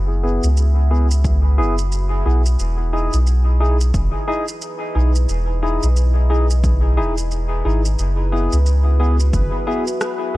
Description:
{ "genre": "ambient dub", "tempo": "89 BPM", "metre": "4/4", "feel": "swing 60% on 16ths", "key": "unclear", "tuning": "A4 = 440 Hz", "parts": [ { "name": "deep dark ambient pad", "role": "sustained chords", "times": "0.0-10.4 s", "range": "E4 to B5", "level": "-32 LUFS", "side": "equal", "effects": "chorus, built-in reverb, vintage 12-bit sampler grit" }, { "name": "soft dub sub bass", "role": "bass", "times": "0.0-10.4 s", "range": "E1 to C#2", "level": "-16 LUFS", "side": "equal", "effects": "none" }, { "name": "barky tine electric piano", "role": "stabs", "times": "0.2-10.4 s", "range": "B3 to G#4", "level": "-23 LUFS", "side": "left 1 dB", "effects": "lush chorus, low-pass filter, dub echo" }, { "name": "electronic shaker and rim click", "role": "drums", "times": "0.4-10.2 s", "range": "none", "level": "-29 LUFS", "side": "right 2 dB", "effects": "dub echo" }, { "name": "electronic kick drum", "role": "drums", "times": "1.2-9.5 s", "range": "none", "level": "-22 LUFS", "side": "equal", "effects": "overdrive" }, { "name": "bubbling stepped-filter texture", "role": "texture", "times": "8.0-10.4 s", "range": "B4", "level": "-30 LUFS", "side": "right 1 dB", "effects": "chorus, built-in reverb" } ], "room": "digital ambience", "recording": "none", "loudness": "-15 LUFS", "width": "side -18 dB against mid", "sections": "0.0-10.4 A section", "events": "fade-in on ambient pad 0.0-10.4", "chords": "0.0 F#9sus4; 2.6 Emaj7; 8.0 F#9sus4" }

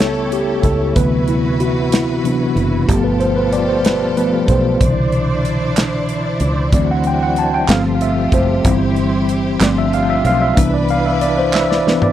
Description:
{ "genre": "slow gospel", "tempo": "62 BPM (dotted quarters)", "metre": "6/8", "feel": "straight", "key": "C major", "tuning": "A4 = 440 Hz", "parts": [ { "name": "mellow tine electric piano", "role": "accompaniment", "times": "0.0-12.1 s", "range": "B2 to A5", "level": "-16 LUFS", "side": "left 1 dB", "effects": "medium stereo tremolo" }, { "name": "clear studio string section", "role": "sustained chords", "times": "0.0-12.1 s", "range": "B2 to D5", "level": "-27 LUFS", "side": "left 1 dB", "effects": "none" }, { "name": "tonewheel organ", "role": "sustained chords", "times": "0.0-12.1 s", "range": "B2 to D5", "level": "-24 LUFS", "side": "right 4 dB", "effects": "slow rotary speaker, chorus vibrato" }, { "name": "fingered electric bass", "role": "bass", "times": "0.0-12.1 s", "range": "F#1 to D2", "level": "-20 LUFS", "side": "equal", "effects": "none" }, { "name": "modern studio drum kit", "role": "drums", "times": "0.0-12.1 s", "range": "hi-hat, kick drum, snare drum, toms", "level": "-17 LUFS", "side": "equal", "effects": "none" }, { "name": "group handclap", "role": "percussion", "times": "5.8-11.8 s", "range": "none", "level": "-22 LUFS", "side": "right 6 dB", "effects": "none" } ], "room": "little or no reverb", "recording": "dry, close 1970s-style studio recording", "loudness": "-13 LUFS", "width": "side -11 dB against mid", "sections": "0.0-12.1 A section", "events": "tine electric piano solo 0.0-12.1; drum fill 11.5-12.1", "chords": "0.0 A7/C#; 1.0 D13; 2.9 G9; 4.8 Cmaj9; 6.7 D9; 7.7 G9sus4; 8.7 C/G; 9.6 G7sus4; 10.6 Cmaj9" }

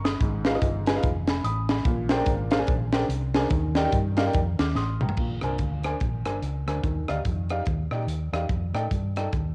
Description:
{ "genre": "uptempo gospel", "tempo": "145 BPM", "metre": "4/4", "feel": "swing 61% on 8ths", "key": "Eb major", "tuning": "A4 = 440 Hz", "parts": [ { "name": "warm baby grand piano", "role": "accompaniment", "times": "0.0-9.3 s", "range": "Ab2 to F6", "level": "-31 LUFS", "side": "equal", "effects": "cassette tape" }, { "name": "hollow-body short-scale fingered electric bass", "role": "bass", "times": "0.0-9.5 s", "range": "F1 to Bb2", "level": "-31 LUFS", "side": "equal", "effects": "none" }, { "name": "crisp fusion drum kit", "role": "drums", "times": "0.1-9.4 s", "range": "crash cymbal, hi-hat, kick drum, rim click, snare drum, toms", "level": "-29 LUFS", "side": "equal", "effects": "cassette tape" } ], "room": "light reverb, small room ambience", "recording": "home recording on cassette", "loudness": "-26 LUFS", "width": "mono", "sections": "0.0-5.2 A section; 5.2-9.5 B section", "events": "drum fill 4.8-5.2", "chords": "0.2 Abm6; 1.9 Bb13; 3.5 Ebmaj7; 5.2 Bb9; 6.8 Ebmaj9; 8.5 F13" }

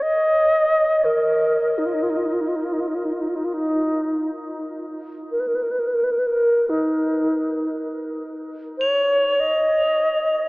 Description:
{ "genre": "world meditative, free-time meditation music", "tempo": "free time", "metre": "none", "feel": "none", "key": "unclear", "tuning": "A4 = 442 Hz", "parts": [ { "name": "mellow reedy alto flute", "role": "melody", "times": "0.0-10.5 s", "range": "Eb4 to Eb5", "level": "-19 LUFS", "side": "equal", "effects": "diffuse ambient delay" }, { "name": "crotales", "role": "texture", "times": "0.0-0.5, 8.8-10.5 s", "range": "Bb6 to F7", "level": "-28 LUFS", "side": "equal", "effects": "none" } ], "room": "wet huge ambient reverb, RT60 8.1 s", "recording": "dreamy mix soaked in reverb, AM radio sound", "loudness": "-18 LUFS", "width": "side -23 dB against mid", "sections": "0.0-7.9 A section; 7.9-10.5 A section", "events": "none", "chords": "none" }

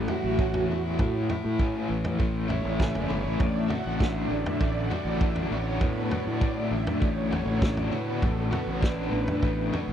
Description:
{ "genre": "psychedelic rock", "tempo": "100 BPM", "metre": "4/4", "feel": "straight", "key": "unclear", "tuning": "A4 = 442 Hz", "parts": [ { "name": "string machine, cellos", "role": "sustained chords", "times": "0.0-9.9 s", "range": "F#4 to F#5", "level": "-33 LUFS", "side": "right 3 dB", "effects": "ensemble chorus" }, { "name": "crunchy overdriven guitar", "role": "riff", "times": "0.0-9.9 s", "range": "A2 to F#4", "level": "-29 LUFS", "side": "left 2 dB", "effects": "tremolo" }, { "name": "fuzz fingered electric bass", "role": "bass", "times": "0.0-9.9 s", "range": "F#1 to A2", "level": "-31 LUFS", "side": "equal", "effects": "overdrive" }, { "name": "vintage drum kit", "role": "drums", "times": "0.1-9.9 s", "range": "kick drum, snare drum, toms", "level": "-28 LUFS", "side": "equal", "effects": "none" } ], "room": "small room ambience", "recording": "dry, close 1970s-style studio recording", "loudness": "-24 LUFS", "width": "side -9 dB against mid", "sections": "0.0-9.9 A section", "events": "string machine solo 0.0-9.9", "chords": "0.0 A; 3.4 D/A" }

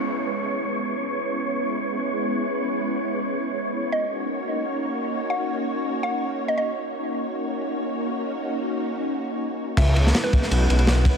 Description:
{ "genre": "drum and bass, jungle", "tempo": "free time", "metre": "none", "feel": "none", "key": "C# dorian", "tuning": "A4 = 440 Hz", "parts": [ { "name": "soft string machine", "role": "sustained chords", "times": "0.0-11.2 s", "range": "G#3 to C#5", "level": "-26 LUFS", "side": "equal", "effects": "ensemble chorus, vintage 12-bit sampler grit" }, { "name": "downlifter", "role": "sound effects", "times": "0.0-1.0 s", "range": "none", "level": "-42 LUFS", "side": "equal", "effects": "none" }, { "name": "wind-like tuned noise texture", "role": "texture", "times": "0.0-11.2 s", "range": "C#5 to F#6", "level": "-31 LUFS", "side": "right 1 dB", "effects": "built-in reverb" }, { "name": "mallet-like synth pluck", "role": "melody", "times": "3.9-6.6, 9.8-10.5 s", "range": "B4 to F#5", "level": "-29 LUFS", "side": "equal", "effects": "chorus, dub echo" }, { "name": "detuned saw bass", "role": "bass", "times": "9.8-11.0 s", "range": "B1 to C#2", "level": "-18 LUFS", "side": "equal", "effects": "none" }, { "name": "crunchy breakbeat drum kit", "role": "drums", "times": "9.8-11.1 s", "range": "crash cymbal, kick drum, ride cymbal, snare drum", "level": "-21 LUFS", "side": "equal", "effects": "none" } ], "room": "moderate lush hall reverb, RT60 1.8 s", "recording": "none", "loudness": "-22 LUFS", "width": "side -6 dB against mid", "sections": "0.0-9.8 A section; 9.8-11.2 B section", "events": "filter sweep on string machine 0.0-9.8; drop 9.8-11.2", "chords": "0.0 C#m7; 3.9 D#m7; 9.8 C#m7" }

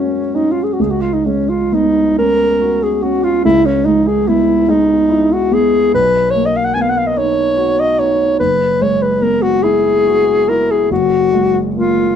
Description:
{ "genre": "classical, impressionist duo for alto saxophone and grand piano", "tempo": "48 BPM (dotted quarters)", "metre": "6/8", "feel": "rubato", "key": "unclear", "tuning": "A4 = 439 Hz", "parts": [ { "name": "mellow alto saxophone", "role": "melody", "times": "0.0-12.2 s", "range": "Db4 to G#5", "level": "-13 LUFS", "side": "left 1 dB", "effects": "none" }, { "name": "dark baby grand piano", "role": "accompaniment", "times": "0.0-12.2 s", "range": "F#1 to Gb4", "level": "-16 LUFS", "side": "right 1 dB", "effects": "none" } ], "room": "light reverb", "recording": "minimal, uncompressed stereo recording, lossy compression artefacts", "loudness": "-11 LUFS", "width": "side -8 dB against mid", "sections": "0.0-12.2 A section", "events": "none", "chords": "0.0 Gbadd9; 0.8 Db7sus4; 3.4 E/Db; 5.9 Bmaj7; 8.4 F#9sus4; 10.9 F#add9" }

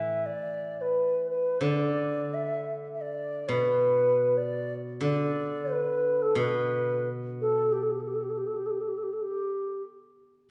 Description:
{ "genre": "chinese traditional", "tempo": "88 BPM", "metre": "4/4", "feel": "rubato", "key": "unclear", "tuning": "A4 = 436 Hz", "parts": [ { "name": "bright reedy xiao", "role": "melody", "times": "0.0-9.8 s", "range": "G4 to E5", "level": "-30 LUFS", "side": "equal", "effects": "none" }, { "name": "steel-string zither", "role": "accompaniment", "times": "0.0-8.4 s", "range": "A2 to E3", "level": "-35 LUFS", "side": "equal", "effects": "none" } ], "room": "wet recital hall reverb, RT60 1.8 s", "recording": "heard from further back in the room, nothing above 10.5 kHz", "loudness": "-28 LUFS", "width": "mono", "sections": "0.0-10.5 A section", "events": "none", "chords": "none" }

